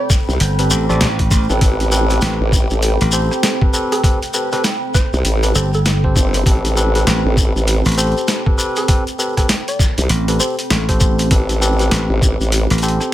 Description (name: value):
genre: glitch hop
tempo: 99 BPM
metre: 4/4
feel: swing 61% on 16ths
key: A minor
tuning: A4 = 435 Hz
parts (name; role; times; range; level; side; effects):
- woody wave-folded pluck; melody; 0.0-11.0 s; A4 to D5; -26 LUFS; right 2 dB; chorus, digital delay
- deep dark ambient pad; texture; 0.0-13.1 s; C4 to B5; -25 LUFS; right 1 dB; chorus, built-in reverb, sidechain pumping
- boom bap sampler-style drum kit; drums; 0.1-13.1 s; hi-hat, rim click, snare drum; -21 LUFS; equal; none
- electronic kick drum; drums; 0.1-12.4 s; none; -15 LUFS; equal; none
- shekere; percussion; 0.1-13.1 s; none; -24 LUFS; left 2 dB; none
- formant-sweep wobble bass; bass; 0.3-12.7 s; G1 to C2; -16 LUFS; equal; chorus
- slap bass; bass; 0.4-13.0 s; G1 to A1; -16 LUFS; equal; none
- bright tine electric piano; stabs; 0.6-13.1 s; C4 to D5; -22 LUFS; equal; vintage 12-bit sampler grit, sidechain pumping, digital delay
room: little or no reverb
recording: none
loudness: -13 LUFS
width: side -14 dB against mid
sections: 0.0-13.1 A section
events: none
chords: 0.0 Am9